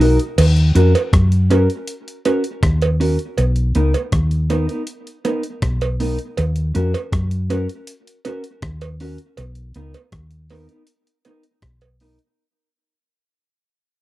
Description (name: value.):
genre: roots reggae.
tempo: 80 BPM.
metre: 4/4.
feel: straight.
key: Eb minor.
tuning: A4 = 440 Hz.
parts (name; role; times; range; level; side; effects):
mellow electric guitar; accompaniment; 0.0-12.2 s; B3 to A#4; -21 LUFS; right 1 dB; lush chorus, tape echo.
hollow-body short-scale fingered electric bass; bass; 0.0-12.2 s; B1 to Gb2; -16 LUFS; equal; none.
breakbeat sampler-style drum kit; drums; 0.0-12.4 s; crash cymbal, hi-hat, kick drum, rim click; -22 LUFS; equal; none.
cowbell; percussion; 0.4-12.0 s; none; -23 LUFS; right 6 dB; none.
room: little or no reverb.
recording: dry, close 1970s-style studio recording.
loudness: -16 LUFS.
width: side -16 dB against mid.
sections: 0.4-12.4 A section.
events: fade-out 0.4-12.4.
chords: 0.4 Ebm7; 3.4 Bmaj7; 6.4 Ebm7; 9.4 Bmaj7.